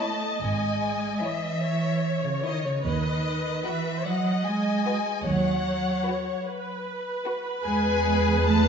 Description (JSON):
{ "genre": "classical, slow romantic movement for string orchestra", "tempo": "50 BPM (dotted quarters)", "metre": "12/8", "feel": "rubato", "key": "unclear", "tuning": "A4 = 440 Hz", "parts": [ { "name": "rich chamber violin section", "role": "melody", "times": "0.0-8.7 s", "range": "C#5 to A5", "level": "-31 LUFS", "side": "left 5 dB", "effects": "none" }, { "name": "clear symphonic violin section", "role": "second line", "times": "0.0-8.7 s", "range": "E4 to C#5", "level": "-31 LUFS", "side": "left 5 dB", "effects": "none" }, { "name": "rich symphonic viola section", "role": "accompaniment", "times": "0.0-8.7 s", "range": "B4 to D#5", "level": "-30 LUFS", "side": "equal", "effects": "none" }, { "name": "clear symphonic cello section", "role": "bass", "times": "0.0-8.7 s", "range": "C#3 to A3", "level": "-27 LUFS", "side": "right 2 dB", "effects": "none" }, { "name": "warm symphonic double bass section", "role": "bass", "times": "0.4-8.7 s", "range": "G#1 to E2", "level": "-29 LUFS", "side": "right 2 dB", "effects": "none" } ], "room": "wet scoring stage reverb, RT60 1.6 s", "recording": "dark, warm production, nothing above 7.7 kHz", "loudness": "-24 LUFS", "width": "side -6 dB against mid", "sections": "0.0-8.7 A section", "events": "none", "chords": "0.0 C#m; 2.9 B/D#; 7.7 E", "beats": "0.41 1.63 | 2.85 4.07 5.25 6.47 | 7.65" }